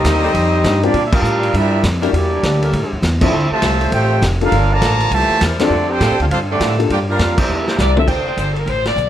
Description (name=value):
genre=jazz, big band swing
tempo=202 BPM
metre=4/4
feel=swing 63% on 8ths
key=F major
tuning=A4 = 440 Hz
part: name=clear trumpet section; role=melody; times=0.0-8.0 s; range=Bb3 to Bb5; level=-19 LUFS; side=right 1 dB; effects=none
part: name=bright trombone section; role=second line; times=0.0-8.0 s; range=Bb2 to G4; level=-20 LUFS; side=right 1 dB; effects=none
part: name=upright bass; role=bass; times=0.0-9.1 s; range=F1 to Bb2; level=-18 LUFS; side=equal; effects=none
part: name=vintage drum kit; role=drums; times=0.0-9.1 s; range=crash cymbal, hi-hat, kick drum, ride cymbal, snare drum, toms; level=-21 LUFS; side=equal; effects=none
part: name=bright saxophone section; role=sustained chords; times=0.2-7.8 s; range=F3 to C5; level=-25 LUFS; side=left 1 dB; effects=none
part: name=dark baby grand piano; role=accompaniment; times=0.8-8.1 s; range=Bb3 to A4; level=-20 LUFS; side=left 6 dB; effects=none
part: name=clear saxophone section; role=melody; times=7.8-9.1 s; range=A4 to E5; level=-19 LUFS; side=left 2 dB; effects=none
part: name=clear trumpet section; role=stabs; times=8.1-8.5 s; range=F4 to G5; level=-25 LUFS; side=right 2 dB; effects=none
room=moderate large studio reverb, RT60 0.7 s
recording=none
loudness=-13 LUFS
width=side -11 dB against mid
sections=0.0-8.1 A section; 8.1-9.1 B section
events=band accent 1.1, 3.2, 5.6, 7.3, 8.8; drum fill 7.5-8.1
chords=0.3 Fsus2; 0.9 Bb6; 2.1 Em7b5; 2.7 A7b9; 3.3 Dm9; 4.5 Gm9; 5.1 C7; 5.7 F69; 6.9 Gm7; 7.5 C9; 8.1 F69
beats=0.05 0.35 0.65 | 0.94 1.24 1.54 1.84 | 2.14 2.44 2.73 3.03 | 3.33 3.63 3.92 4.22 | 4.52 4.82 5.12 5.41 | 5.71 6.01 6.30 6.60 | 6.90 7.19 7.49 7.79 | 8.09 8.38 8.68 8.98